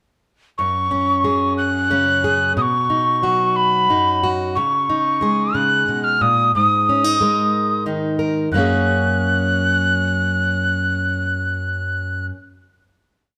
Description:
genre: indie folk with a building arrangement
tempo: 60 BPM (dotted quarters)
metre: 6/8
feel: straight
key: F# major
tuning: A4 = 441 Hz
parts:
  - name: breathy mellow mid whistle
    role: melody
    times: 0.6-12.3 s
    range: B5 to F#6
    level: -20 LUFS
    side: equal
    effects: none
  - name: fingerpicked plugged-in steel-string acoustic guitar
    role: accompaniment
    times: 0.6-12.4 s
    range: F#2 to A#4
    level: -23 LUFS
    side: equal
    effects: none
room: moderate stone room reverb, RT60 1.4 s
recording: band playing live in one room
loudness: -18 LUFS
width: mono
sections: 0.6-8.5 verse; 8.5-12.5 final chord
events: none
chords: 0.6 F#sus2; 2.6 B; 4.6 C#sus2; 6.5 G#sus2; 8.5 F#add9

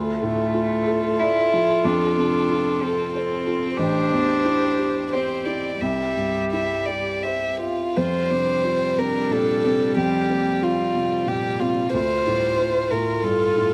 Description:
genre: neoclassical piano and strings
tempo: 78-94 BPM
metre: 3/4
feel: rubato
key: F major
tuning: A4 = 440 Hz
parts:
  - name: dark violin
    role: melody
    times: 0.0-13.7 s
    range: F4 to E5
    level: -26 LUFS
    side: equal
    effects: none
  - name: rich cello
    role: second line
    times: 0.0-13.7 s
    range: G3 to F4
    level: -28 LUFS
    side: equal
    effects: none
  - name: dark viola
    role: accompaniment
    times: 0.0-13.7 s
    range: G3 to G4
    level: -31 LUFS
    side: equal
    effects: none
  - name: felt-muted upright piano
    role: accompaniment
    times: 0.0-13.7 s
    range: A1 to E5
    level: -28 LUFS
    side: equal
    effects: none
room: light reverb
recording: none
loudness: -22 LUFS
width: mono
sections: 0.0-8.0 A section; 8.0-13.7 B section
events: none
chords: 0.0 Dm; 1.8 F; 3.8 Am7; 5.8 C; 8.0 Fsus2; 11.9 Dm

